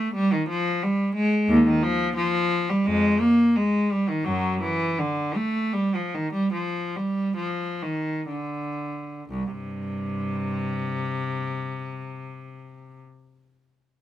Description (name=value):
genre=classical, baroque-style suite movement for unaccompanied cello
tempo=56-90 BPM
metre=4/4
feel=rubato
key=C minor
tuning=A4 = 440 Hz
part: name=rich cello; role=solo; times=0.0-13.0 s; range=C2 to Bb3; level=-22 LUFS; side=equal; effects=none
room=light reverb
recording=minimal, uncompressed stereo recording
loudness=-22 LUFS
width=side -12 dB against mid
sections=0.0-9.3 A section; 9.3-13.1 B section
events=slowing down 1.5-9.3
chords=none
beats=| 0.13 0.80 1.47 2.16 | 2.86 3.56 4.26 4.99 | 5.75 6.54 7.38 8.28 | 9.30 10.24 11.19 12.14